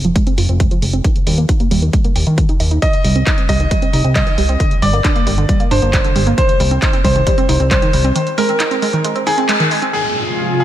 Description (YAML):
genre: uplifting trance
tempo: 135 BPM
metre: 4/4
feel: straight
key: F dorian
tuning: A4 = 444 Hz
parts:
  - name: analog pluck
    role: arpeggios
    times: 0.0-9.9 s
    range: D3 to Eb5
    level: -19 LUFS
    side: right 2 dB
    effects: chorus, sidechain pumping, tape echo
  - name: fat analog bass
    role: bass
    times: 0.0-8.1 s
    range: F1 to Eb2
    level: -15 LUFS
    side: equal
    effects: sidechain pumping
  - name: punchy analog drum machine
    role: drums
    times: 0.0-10.0 s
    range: crash cymbal, handclaps, hi-hat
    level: -22 LUFS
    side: equal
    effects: low-pass filter on hats, low-pass filter on snare, low-pass filter on cymbals
  - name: electronic kick drum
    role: drums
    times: 0.2-7.8 s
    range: none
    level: -16 LUFS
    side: equal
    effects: overdrive
  - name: bright grand piano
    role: second line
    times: 2.8-10.6 s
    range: Ab4 to Eb5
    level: -18 LUFS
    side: equal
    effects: diffuse ambient delay
  - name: shimmering ambient pad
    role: sustained chords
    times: 10.2-10.6 s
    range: C3 to Ab4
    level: -18 LUFS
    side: equal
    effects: chorus, built-in reverb, sidechain pumping
  - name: downlifter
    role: sound effects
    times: 9.9-10.6 s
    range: none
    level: -22 LUFS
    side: left 1 dB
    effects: none
room: light reverb, digital ambience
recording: none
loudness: -12 LUFS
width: side -12 dB against mid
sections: 0.0-9.9 A section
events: filter sweep on synth arpeggio sound 0.0-9.9; break 8.2-9.9; band accent 9.5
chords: 0.0 Fm; 1.0 Eb; 2.8 Cm; 4.6 Gm; 6.4 Cm; 8.2 Ab; 9.9 Fm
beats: 0.16 0.60 | 1.04 1.49 1.93 2.38 | 2.82 3.27 3.71 4.16 | 4.60 5.04 5.49 5.93 | 6.38 6.82 7.27 7.71 | 8.16 8.60 9.04 9.49 | 9.93 10.38